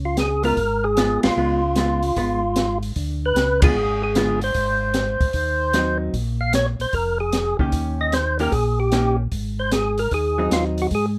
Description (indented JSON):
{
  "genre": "soul jazz organ trio",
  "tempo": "151 BPM",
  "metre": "4/4",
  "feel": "swing 66% on 8ths",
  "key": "unclear",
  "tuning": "A4 = 440 Hz",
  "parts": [
    { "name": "tonewheel organ", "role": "bass", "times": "0.0-11.2 s", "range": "F1 to Ab2", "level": "-27 LUFS", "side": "equal", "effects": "chorus vibrato, slow rotary speaker" },
    { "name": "percussive tonewheel organ", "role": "melody", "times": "0.1-11.1 s", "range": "F4 to F5", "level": "-24 LUFS", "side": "equal", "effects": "slow rotary speaker, overdrive" },
    { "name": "open jazz drum kit", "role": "drums", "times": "0.2-11.0 s", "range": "hi-hat, kick drum, ride cymbal, snare drum", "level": "-25 LUFS", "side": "equal", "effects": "none" },
    { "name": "vintage hollow-body jazz guitar", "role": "accompaniment", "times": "0.4-10.9 s", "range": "D3 to G4", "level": "-27 LUFS", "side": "equal", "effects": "none" }
  ],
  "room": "light reverb",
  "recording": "none",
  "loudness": "-21 LUFS",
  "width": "mono",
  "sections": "0.0-11.2 A section",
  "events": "band accent 1.2, 3.6",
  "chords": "0.0 Db7; 3.0 Ddim7; 4.5 Ab7; 6.1 Bbm7; 7.7 Eb7; 9.3 Ab7"
}